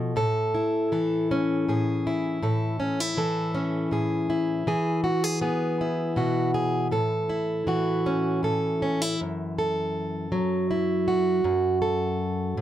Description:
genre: folk, solo fingerstyle acoustic guitar.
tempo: 53 BPM (dotted quarters).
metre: 6/8.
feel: straight.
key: A major.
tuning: A4 = 440 Hz.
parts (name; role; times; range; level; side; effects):
fingerpicked plugged-in steel-string acoustic guitar; solo; 0.0-12.6 s; F#2 to A4; -23 LUFS; equal; none.
room: moderate small room reverb, RT60 0.5 s.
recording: none.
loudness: -23 LUFS.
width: side -12 dB against mid.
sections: 0.0-9.2 A section; 9.2-12.6 B section.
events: none.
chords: 0.2 A; 4.7 E; 6.9 A; 9.2 F#m7.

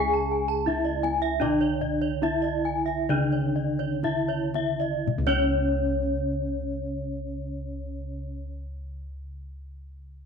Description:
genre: Balinese gamelan.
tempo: 55-88 BPM.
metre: 4/4.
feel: straight.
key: unclear.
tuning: A4 = 441 Hz.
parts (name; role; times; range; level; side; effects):
gamelan-type bronze metallophone; melody; 0.0-8.5 s; C#4 to G#4; -29 LUFS; equal; slapback echo.
gamelan-type bronze metallophone; accompaniment; 0.0-8.5 s; C#3 to G#3; -36 LUFS; right 14 dB; none.
gamelan-type bronze metallophone; arpeggios; 0.0-8.5 s; C#5 to G#5; -30 LUFS; left 9 dB; none.
gamelan-type bossed gongs; bass; 0.0-8.4 s; C#2 to D4+35c; -30 LUFS; equal; none.
gamelan-type bronze metallophone; arpeggios; 0.1-8.5 s; C#5 to A5; -32 LUFS; right 12 dB; none.
kendang; percussion; 0.1-5.6 s; none; -34 LUFS; left 7 dB; none.
room: moderate spring reverb, RT60 1.7 s, small room ambience.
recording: 1960s-style stereo with parts hard left and right.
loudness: -24 LUFS.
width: side -6 dB against mid.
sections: 0.0-5.1 A section; 5.1-9.4 B section.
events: slowing down 0.0-5.1.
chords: none.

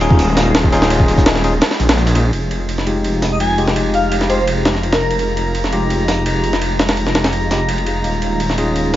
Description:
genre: drum and bass, jungle.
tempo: 168 BPM.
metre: 4/4.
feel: straight.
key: F minor.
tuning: A4 = 440 Hz.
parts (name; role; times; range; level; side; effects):
soft string machine; sustained chords; 0.0-9.0 s; Ab3 to G4; -24 LUFS; equal; phaser, ensemble chorus.
bell-like tine electric piano; stabs; 0.0-9.0 s; Ab3 to Ab4; -21 LUFS; left 2 dB; vintage 12-bit sampler grit, low-pass filter, dub echo.
detuned saw bass; bass; 0.0-9.0 s; Eb1 to Bb1; -18 LUFS; equal; none.
crunchy breakbeat drum kit; drums; 0.0-2.2 s; hi-hat, snare drum; -28 LUFS; right 1 dB; none.
jungle sampler-style drum kit; drums; 0.0-9.0 s; hi-hat, kick drum, ride cymbal, snare drum; -18 LUFS; equal; high-pass filter on snare, high-pass filter on hats, high-pass filter on cymbals, high-pass filter on kick, high-pass filter on room.
drifting glass-harmonics texture; texture; 0.0-9.0 s; Ab4 to Bb5; -27 LUFS; left 1 dB; chorus, built-in reverb.
airy dreamy lead; melody; 3.3-5.2 s; Bb4 to Ab5; -21 LUFS; equal; chorus, phaser, cassette tape, dub echo.
room: light reverb, digital ambience.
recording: vinyl crackle, nothing above 7.5 kHz.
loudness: -13 LUFS.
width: side -13 dB against mid.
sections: 0.0-2.3 A section; 2.3-9.0 B section.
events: drop 0.0-2.3; kick drops out 1.6-2.3; filter sweep on tine electric piano 2.3-9.0.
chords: 0.0 Eb9sus4; 2.3 Fm9; 8.0 Eb9sus4.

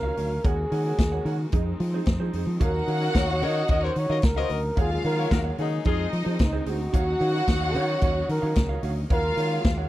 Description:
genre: disco.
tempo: 111 BPM.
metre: 4/4.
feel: straight.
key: Eb dorian.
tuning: A4 = 440 Hz.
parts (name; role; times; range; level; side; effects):
breathy flugelhorn; melody; 0.0-9.6 s; Eb4 to Eb5; -28 LUFS; equal; none.
mellow electric guitar; accompaniment; 0.0-9.9 s; Eb4 to Gb5; -35 LUFS; right 9 dB; none.
rich studio string section; sustained chords; 0.0-9.9 s; Db3 to F5; -36 LUFS; left 1 dB; none.
fingered electric bass; bass; 0.0-9.8 s; Db2 to F3; -27 LUFS; equal; none.
vintage drum kit; drums; 0.2-9.8 s; hi-hat, kick drum, snare drum; -24 LUFS; equal; none.
warm studio violin section; second line; 2.6-9.9 s; Eb4 to Gb5; -30 LUFS; left 2 dB; none.
warm horn section; stabs; 3.0-6.1 s; Bb3 to Eb5; -30 LUFS; left 10 dB; none.
room: little or no reverb.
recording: dry, close 1970s-style studio recording.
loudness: -22 LUFS.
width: side -15 dB against mid.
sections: 0.0-9.9 A section.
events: none.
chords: 0.4 Ab9sus4/Eb; 1.5 Fm7; 2.6 Ebm9; 4.8 Ab9sus4/Eb; 5.9 Fm7; 6.9 Ebm9; 9.1 Ab9sus4/Eb.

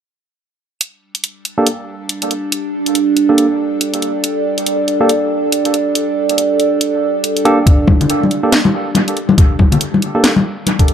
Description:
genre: deep dubstep.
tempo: 140 BPM.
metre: 4/4.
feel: swing 59% on 16ths, half-time.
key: G minor.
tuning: A4 = 440 Hz.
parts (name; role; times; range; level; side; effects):
overtone-sweeping drone; sustained chords; 2.1-10.9 s; G3 to A4; -16 LUFS; right 3 dB; chorus, built-in reverb.
garage drum kit; drums; 0.8-10.9 s; hi-hat, snare drum; -17 LUFS; equal; dub echo.
barky tine electric piano; stabs; 1.6-10.3 s; Bb3 to A4; -18 LUFS; right 1 dB; overdrive, low-pass filter, dub echo.
electronic kick drum; drums; 7.7-10.9 s; none; -10 LUFS; equal; none.
congas; percussion; 7.9-10.8 s; none; -15 LUFS; left 3 dB; dub echo.
room: moderate spring reverb, RT60 2.0 s, digital ambience.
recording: echo-heavy mix.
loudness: -12 LUFS.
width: side -8 dB against mid.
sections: 0.8-10.9 A section.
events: none.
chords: 0.8 Gsus2.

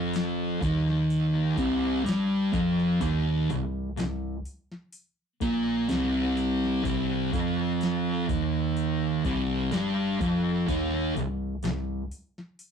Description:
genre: stoner and doom metal.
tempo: 63 BPM.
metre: 4/4.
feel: straight.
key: C minor.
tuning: A4 = 440 Hz.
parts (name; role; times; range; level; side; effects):
thick fuzz guitar; riff; 0.0-12.0 s; C2 to Bb3; -25 LUFS; equal; distortion.
hollow-body short-scale picked electric bass; bass; 0.0-12.1 s; C1 to Bb1; -36 LUFS; equal; overdrive.
soft vintage rhythm box; drums; 0.1-12.7 s; hi-hat, kick drum, snare drum; -33 LUFS; left 1 dB; overdrive.
room: moderate small room reverb, RT60 0.6 s.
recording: rough rehearsal-room recording, warm saturation.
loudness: -25 LUFS.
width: side -7 dB against mid.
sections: 0.0-12.7 A section.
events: none.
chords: 0.0 Cm.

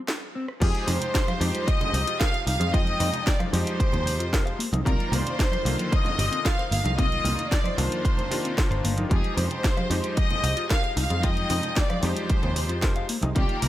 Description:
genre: nu-disco, nu disco.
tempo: 113 BPM.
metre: 4/4.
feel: straight.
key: F dorian.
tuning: A4 = 440 Hz.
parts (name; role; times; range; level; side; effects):
bright electric grand piano; accompaniment; 0.0-13.7 s; D3 to G5; -33 LUFS; left 2 dB; sidechain pumping.
house drum kit; drums; 0.1-13.7 s; crash cymbal, hi-hat, rim click, snare drum; -31 LUFS; equal; none.
mellow electric guitar; riff; 0.4-13.7 s; Bb3 to F5; -35 LUFS; left 3 dB; lush chorus.
warm symphonic violin section; melody; 0.6-13.7 s; G4 to F5; -29 LUFS; left 1 dB; dub echo.
picked electric bass; bass; 0.6-13.7 s; G1 to F2; -26 LUFS; equal; none.
electronic kick drum; drums; 0.6-13.5 s; none; -24 LUFS; equal; none.
congas; percussion; 0.9-13.7 s; none; -34 LUFS; right 2 dB; none.
room: digital ambience.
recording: none.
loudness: -22 LUFS.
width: side -14 dB against mid.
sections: 0.6-13.7 A section.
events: drop 0.6-13.7.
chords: 0.0 Cm11; 0.6 Fm9; 4.6 Cm11; 9.1 Fm9; 13.1 Cm11.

